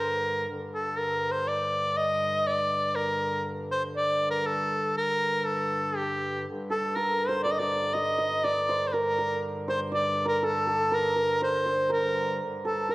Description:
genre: medieval dance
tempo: 121 BPM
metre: 3/4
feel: straight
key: G minor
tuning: A4 = 440 Hz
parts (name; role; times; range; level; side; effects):
- edgy shawm; melody; 0.0-12.9 s; G4 to Eb5; -27 LUFS; equal; none
- hand-pumped harmonium; drone; 0.0-12.9 s; G2 to D3; -34 LUFS; left 1 dB; none
- hammered dulcimer; second line; 6.7-12.9 s; A4 to Eb5; -29 LUFS; right 1 dB; none
room: wet recital hall reverb, RT60 1.5 s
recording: worn, warbling old tape, cassette tape, warbly pitch drift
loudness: -25 LUFS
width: side -19 dB against mid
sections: 0.0-6.5 A section; 6.5-12.9 A section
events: none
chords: none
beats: | 0.47 0.97 1.47 | 1.97 2.47 2.97 | 3.46 3.96 4.46 | 4.96 5.46 5.95 | 6.45 6.95 7.45 | 7.94 8.44 8.94 | 9.43 9.93 10.43 | 10.92 11.42 11.91 | 12.41 12.91

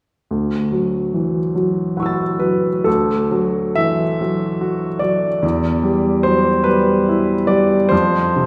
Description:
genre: classical, impressionist solo piano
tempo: 47 BPM (dotted quarters)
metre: 6/8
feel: uneven beats, rubato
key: D mixolydian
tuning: A4 = 440 Hz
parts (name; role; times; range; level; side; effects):
- clear baby grand piano; solo; 0.3-8.5 s; D2 to A6; -18 LUFS; equal; none
room: wet recital hall reverb, RT60 1.7 s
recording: heard from further back in the room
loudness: -18 LUFS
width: mono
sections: 0.3-2.9 A section; 2.9-8.5 B section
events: none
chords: 0.3 Dmaj9; 2.9 D; 5.4 Em7; 7.9 F5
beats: | 0.30 1.53 | 2.86 4.21 | 5.43 6.66 | 7.92

